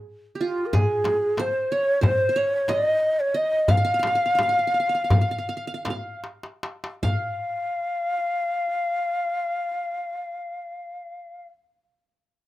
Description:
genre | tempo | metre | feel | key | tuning
Turkish makam ensemble | 148-185 BPM (eighths) | 9/8 | straight | F makam nihavent | A4 = 443 Hz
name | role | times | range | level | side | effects
qanun | second line | 0.0-11.8 s | F4 to F5 | -31 LUFS | right 4 dB | plate reverb
breathy low ney | melody | 0.4-11.4 s | F4 to F5 | -23 LUFS | equal | plate reverb
darbuka | percussion | 0.6-7.4 s | none | -24 LUFS | left 1 dB | none
frame drum | percussion | 0.7-7.4 s | none | -28 LUFS | left 1 dB | none
room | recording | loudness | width
moderate small room reverb, RT60 0.6 s | rough home demo mix | -21 LUFS | side -16 dB against mid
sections
0.0-7.0 A section; 7.0-10.7 B section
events
slowing down 1.4-7.0; drum fill 6.2-7.0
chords
none

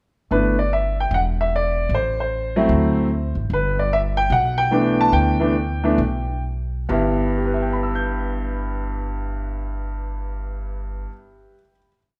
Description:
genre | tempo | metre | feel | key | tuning
jazz piano trio | 128-151 BPM | 4/4 | swing 65% on 8ths | G major | A4 = 440 Hz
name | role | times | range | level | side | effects
clear upright piano | melody | 0.3-12.1 s | G2 to G6 | -23 LUFS | equal | none
upright bass | bass | 0.3-11.0 s | E1 to D2 | -26 LUFS | equal | none
room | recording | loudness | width
moderate recital hall reverb, RT60 1.4 s | recorded in a church or concert hall | -21 LUFS | mono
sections
0.3-6.9 A section; 6.9-10.7 final chord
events
slowing down 3.5-6.9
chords
0.3 G6; 1.1 Dsus2/E; 1.9 Am; 2.7 D7; 3.5 G6

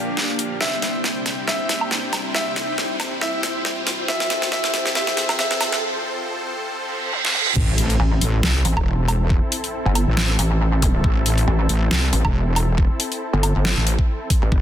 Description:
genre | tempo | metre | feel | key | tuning
heavy wobble dubstep | 138 BPM | 4/4 | swing 55% on 16ths, half-time | A minor from 7.6 s | A4 = 440 Hz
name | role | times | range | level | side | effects
bright concert grand piano | melody | 0.0-5.8 s | G4 to E5 | -26 LUFS | equal | low-pass filter, tape echo
supersaw chords | sustained chords | 0.0-14.6 s | F2 to G5 | -29 LUFS | equal | sidechain pumping, low-pass filter
riser, reverse cymbal, impact and zap | sound effects | 0.1-10.9 s | none | -28 LUFS | right 2 dB | none
deep dark ambient pad | texture | 0.0-5.8 s | Bb3 to G5 | -30 LUFS | equal | chorus, built-in reverb, sidechain pumping
dubstep drum kit | drums | 0.2-14.4 s | crash cymbal, hi-hat, snare drum, toms, woodblock | -23 LUFS | equal | overdrive, high-pass filter on snare, high-pass filter on hats, high-pass filter on perc, high-pass filter on toms, high-pass filter on cymbals
wobble bass | bass | 7.6-14.6 s | E1 to C2 | -19 LUFS | equal | chorus, overdrive
electronic kick drum | drums | 7.6-14.6 s | none | -19 LUFS | equal | overdrive
pulsing pluck wobble bass | bass | 8.0-14.5 s | G1 to A1 | -18 LUFS | equal | chorus, overdrive
room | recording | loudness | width
light reverb, digital ambience | dense, heavily limited modern master, high-pass filter | -18 LUFS | side -10 dB against mid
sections
0.0-7.6 A section; 7.6-14.6 B section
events
build-up 0.0-7.6; drum fill 0.0-5.8, 7.1-7.6; riser 0.1-5.8; break 5.8-7.6; reverse cymbal 6.9-7.6; drop 7.6-14.6; impact 7.6-9.3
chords
0.0 Bb; 0.6 C; 4.1 F; 7.6 Am

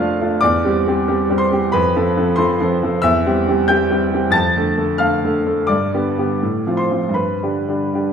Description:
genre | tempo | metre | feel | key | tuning
classical, romantic character piece for solo piano | 78-93 BPM | 2/4 | rubato | C major | A4 = 441 Hz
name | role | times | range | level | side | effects
bright grand piano | solo | 0.0-8.1 s | E2 to A6 | -15 LUFS | equal | none
room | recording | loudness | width
moderate recital hall reverb, RT60 1.4 s | minimal, uncompressed stereo recording | -15 LUFS | side -7 dB against mid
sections
0.0-8.1 A section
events
none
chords
0.4 C/E; 1.7 F; 3.0 C/E; 4.3 Dm/F; 5.7 G; 6.4 F/A; 7.1 G

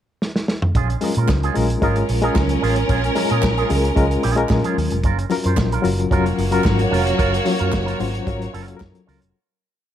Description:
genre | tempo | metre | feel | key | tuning
disco | 112 BPM | 4/4 | straight | Bb minor | A4 = 440 Hz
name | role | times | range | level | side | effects
warm soul drum kit | drums | 0.2-9.3 s | hi-hat, kick drum, snare drum, toms | -23 LUFS | right 1 dB | none
electric guitar with an envelope filter | accompaniment | 0.8-9.3 s | Db4 to C5 | -28 LUFS | right 10 dB | spring reverb
vintage muted fingered electric bass | bass | 0.8-9.3 s | F1 to Bb2 | -21 LUFS | right 1 dB | none
congas | percussion | 0.8-9.1 s | none | -30 LUFS | left 7 dB | none
reed electric piano | accompaniment | 1.0-9.4 s | Gb3 to Db5 | -22 LUFS | left 4 dB | overdrive, fast tremolo
group handclap | percussion | 1.3-8.9 s | none | -35 LUFS | right 6 dB | none
warm studio violin section | second line | 1.8-9.3 s | Bb3 to Db5 | -23 LUFS | right 2 dB | none
room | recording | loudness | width
little or no reverb | none | -16 LUFS | side -10 dB against mid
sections
0.0-0.7 pickup bar; 0.7-9.3 groove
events
drum fill 0.2-0.7; fade-out 7.2-9.3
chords
0.0 N.C.; 0.7 Bbm7; 5.0 Gbmaj7

